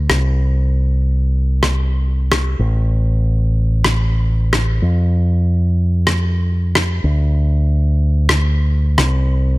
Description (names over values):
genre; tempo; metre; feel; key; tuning
nu-disco, nu disco; 108 BPM; 4/4; straight; unclear; A4 = 440 Hz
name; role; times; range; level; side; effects
fingered electric bass with an envelope filter; bass; 0.0-9.6 s; A1 to F2; -14 LUFS; equal; none
rim click; drums; 0.1-9.1 s; none; -20 LUFS; equal; studio reverb
room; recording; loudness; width
little or no reverb; none; -14 LUFS; side -20 dB against mid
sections
0.0-9.6 A section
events
none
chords
none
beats
| 0.37 0.93 1.49 2.04 | 2.60 3.15 3.71 4.26 | 4.82 5.37 5.93 6.49 | 7.04 7.60 8.15 8.71 | 9.26